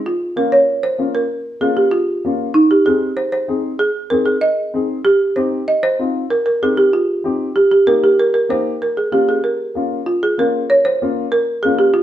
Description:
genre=latin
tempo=192 BPM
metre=4/4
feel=straight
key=Bb dorian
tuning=A4 = 442 Hz
part: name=folk marimba with medium hard mallets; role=melody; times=0.1-12.0 s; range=Eb4 to Eb5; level=-14 LUFS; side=right 2 dB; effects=none
part: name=warm upright piano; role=accompaniment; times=0.4-11.9 s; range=Bb3 to Ab4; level=-21 LUFS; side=left 4 dB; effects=none
room=wet stone room reverb, RT60 0.9 s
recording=band playing live in one room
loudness=-14 LUFS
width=side -12 dB against mid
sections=0.1-10.1 A section; 10.1-12.0 B section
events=none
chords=0.1 Bbm; 2.6 Ab; 5.1 Cm; 7.6 Eb; 8.8 Bbm

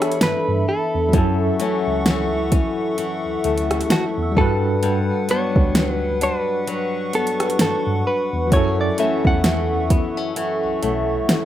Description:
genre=contemporary R&B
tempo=65 BPM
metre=4/4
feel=swing 58% on 16ths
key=F# phrygian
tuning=A4 = 438 Hz
part: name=direct-recorded clean electric guitar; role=melody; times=0.0-11.1 s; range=F#4 to F#5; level=-23 LUFS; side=right 1 dB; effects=none
part: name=bell-like tine electric piano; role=accompaniment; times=0.0-11.4 s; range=E3 to B4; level=-27 LUFS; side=right 1 dB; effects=medium stereo tremolo
part: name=hollow soft pad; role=sustained chords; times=0.0-11.4 s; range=D4 to C#6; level=-25 LUFS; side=left 1 dB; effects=chorus, sidechain pumping
part: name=flamenco guitar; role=arpeggios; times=0.0-11.4 s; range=F#2 to A4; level=-26 LUFS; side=left 6 dB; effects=tape echo
part: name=smooth R&B drum kit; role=drums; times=0.0-11.4 s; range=hi-hat, kick drum, rim click, snare drum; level=-20 LUFS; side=right 1 dB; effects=none
part: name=celesta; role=texture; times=0.0-11.4 s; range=C#5 to F#6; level=-33 LUFS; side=right 3 dB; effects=tape echo
part: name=mellow tine electric piano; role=bass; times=0.2-11.2 s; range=B1 to G2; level=-24 LUFS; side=right 1 dB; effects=medium stereo tremolo
room=little or no reverb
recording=rough home demo mix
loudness=-17 LUFS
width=side -12 dB against mid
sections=0.0-11.4 A section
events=none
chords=0.0 E7sus4; 1.1 F#m7; 4.4 Gmaj7; 8.5 F#m7

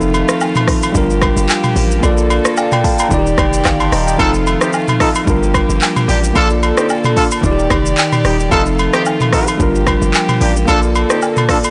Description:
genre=afrobeats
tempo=111 BPM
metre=4/4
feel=swing 55% on 16ths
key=G minor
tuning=A4 = 440 Hz
part: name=bell-like tine electric piano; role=accompaniment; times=0.0-11.7 s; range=Eb3 to C6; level=-19 LUFS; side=equal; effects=none
part: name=rich chamber string section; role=sustained chords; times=0.0-11.7 s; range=D3 to D5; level=-25 LUFS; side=equal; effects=sidechain pumping
part: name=hard-hitting 808-style bass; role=bass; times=0.0-11.0 s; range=Eb1 to Bb1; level=-19 LUFS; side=equal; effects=none
part: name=afro-pop drum kit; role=drums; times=0.0-11.7 s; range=handclaps, hi-hat, kick drum, rim click, shaker, toms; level=-19 LUFS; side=equal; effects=soft clipping on snare
part: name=agogo bells and woodblock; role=percussion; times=0.1-11.7 s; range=none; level=-24 LUFS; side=equal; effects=none
part: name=warm horn section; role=second line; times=4.2-11.6 s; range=G3 to A4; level=-20 LUFS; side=equal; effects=none
room=light reverb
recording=blown-out, overdriven recording, overdrive, nothing above 10.9 kHz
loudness=-14 LUFS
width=mono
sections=0.0-11.7 A section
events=tine electric piano fill 3.1-4.2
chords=0.0 F7; 1.0 Gm7; 2.0 Bbmaj7; 3.1 Ebmaj7; 4.2 F7; 5.3 Gm7; 6.4 Bbmaj7; 7.4 Ebmaj7; 8.5 F7; 9.6 Gm7; 10.7 Bbmaj7

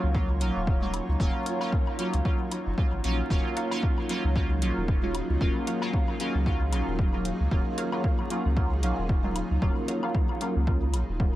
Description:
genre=dub techno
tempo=114 BPM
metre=4/4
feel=swing 56% on 16ths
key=Eb minor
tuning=A4 = 438 Hz
part: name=granular cloud pad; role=sustained chords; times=0.0-11.4 s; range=Gb3 to Db5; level=-36 LUFS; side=equal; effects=built-in reverb, sidechain pumping
part: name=soft dub sub bass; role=bass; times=0.0-11.4 s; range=Eb1 to Db2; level=-28 LUFS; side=equal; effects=sidechain pumping
part: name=resonant sweep polysynth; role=stabs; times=0.1-11.3 s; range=Gb3 to F4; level=-30 LUFS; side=equal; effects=chorus, phaser, sidechain pumping, dub echo
part: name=electronic kick drum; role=drums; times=0.1-11.3 s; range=none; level=-26 LUFS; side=equal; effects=none
part: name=electronic hi-hat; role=drums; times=0.4-11.1 s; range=none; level=-39 LUFS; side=left 1 dB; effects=none
part: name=congas and woodblock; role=percussion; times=0.8-11.1 s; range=none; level=-42 LUFS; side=left 2 dB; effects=sidechain pumping on perc, dub echo
part: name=filtered dub chord stab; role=riff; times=1.5-10.1 s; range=Gb4 to F5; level=-42 LUFS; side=right 2 dB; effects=none
room=light reverb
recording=echo-heavy mix, vinyl crackle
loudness=-24 LUFS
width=side -15 dB against mid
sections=0.0-11.4 A section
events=filter sweep on analog polysynth 0.0-11.4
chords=0.0 Ebm9

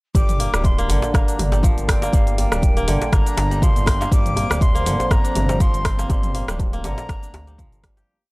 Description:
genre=afro house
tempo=121 BPM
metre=4/4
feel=swing 55% on 16ths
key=G minor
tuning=A4 = 440 Hz
part: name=breathy mellow jazz flute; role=melody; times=0.1-7.8 s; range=F5 to D6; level=-28 LUFS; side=left 1 dB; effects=tape echo
part: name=kora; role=arpeggios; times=0.1-8.3 s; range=D3 to G4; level=-27 LUFS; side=equal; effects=sidechain pumping, tape echo
part: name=smooth synth bass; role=bass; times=0.1-8.0 s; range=D1 to D2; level=-23 LUFS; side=equal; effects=sidechain pumping
part: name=electronic kick drum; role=drums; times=0.1-7.9 s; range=none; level=-18 LUFS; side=equal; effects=none
part: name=djembe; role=percussion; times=0.1-8.1 s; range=none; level=-29 LUFS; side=equal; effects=none
part: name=dark analog pad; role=sustained chords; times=0.2-8.1 s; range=F3 to D5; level=-29 LUFS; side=equal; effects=chorus, phaser, sidechain pumping
part: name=deep house drum kit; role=drums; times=0.2-8.1 s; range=cabasa, hi-hat, rim click, toms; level=-26 LUFS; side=equal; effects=none
room=little or no reverb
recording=dry, gritty hardware recording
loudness=-16 LUFS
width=side -24 dB against mid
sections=0.1-8.1 drop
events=drop 0.1-8.1; fade-out 5.4-8.1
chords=0.1 Gm; 4.1 Fsus4

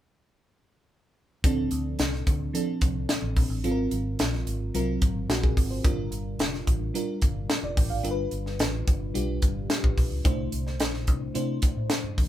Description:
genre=polished 1980s jazz-funk pop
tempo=109 BPM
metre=4/4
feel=straight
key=D minor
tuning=A4 = 440 Hz
part: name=bell-like FM electric piano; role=accompaniment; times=1.4-12.3 s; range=F3 to G5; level=-31 LUFS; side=right 1 dB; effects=chorus
part: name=vintage muted fingered electric bass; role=bass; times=1.4-12.3 s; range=F1 to C3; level=-31 LUFS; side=equal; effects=none
part: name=crisp fusion drum kit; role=drums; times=1.4-12.3 s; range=hi-hat, kick drum, snare drum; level=-25 LUFS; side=equal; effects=none
room=light reverb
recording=band playing live in one room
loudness=-24 LUFS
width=side -12 dB against mid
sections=1.4-12.3 A section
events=none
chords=1.4 Dm7; 3.6 G#13; 5.8 Gm7; 8.0 G7; 10.2 C69

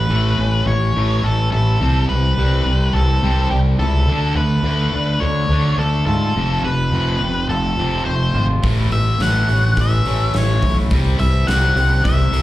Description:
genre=quiet-loud alternative rock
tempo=105 BPM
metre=4/4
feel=straight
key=unclear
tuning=A4 = 439 Hz
part: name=octave-fuzz lead guitar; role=melody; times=0.0-12.4 s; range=G4 to F#5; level=-22 LUFS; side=left 1 dB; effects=distortion
part: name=electric guitar through a small old amp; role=arpeggios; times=0.0-12.4 s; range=F2 to F4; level=-27 LUFS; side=left 1 dB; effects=wide subtle chorus
part: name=thick fuzz guitar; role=riff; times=0.0-12.4 s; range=F2 to D4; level=-23 LUFS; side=equal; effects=distortion, slapback echo
part: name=fingered electric bass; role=bass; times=0.0-12.4 s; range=F1 to G#2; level=-17 LUFS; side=equal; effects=none
part: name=big rock drum kit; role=drums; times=8.6-12.4 s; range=hi-hat, kick drum, snare drum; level=-23 LUFS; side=equal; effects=none
room=little or no reverb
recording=live gig heard through the venue's PA, club reverb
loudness=-15 LUFS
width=side -15 dB against mid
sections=0.0-12.4 A section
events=none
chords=0.0 A; 1.8 C; 4.1 Dm; 6.4 F; 8.6 A; 10.9 C

